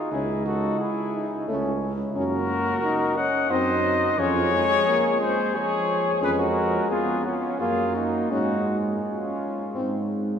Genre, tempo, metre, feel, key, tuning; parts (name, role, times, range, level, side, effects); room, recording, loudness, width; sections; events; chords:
classical, brass quintet; 88 BPM; 3/4; uneven beats; Db major; A4 = 440 Hz
dark trumpet; melody; 0.0-10.1 s; F4 to Gb5; -27 LUFS; left 5 dB
mellow trumpet; second line; 0.0-10.1 s; Db4 to Eb5; -28 LUFS; right 2 dB
warm trombone; accompaniment; 0.0-10.1 s; F3 to F4; -28 LUFS; right 1 dB
clear French horn; accompaniment; 0.1-10.0 s; A3 to Db4; -32 LUFS; left 2 dB
warm tuba; bass; 0.1-10.3 s; C#2 to Ab2; -29 LUFS; right 2 dB
wet cathedral reverb, RT60 6.5 s; small room ambience; -22 LUFS; side -8 dB against mid
0.0-10.4 A section
0.1 C#m; 1.5 A/C#; 2.2 Gb6; 3.5 Cdim/Gb; 4.2 Db/F; 7.6 Gb; 8.3 Db/Ab; 9.7 Ab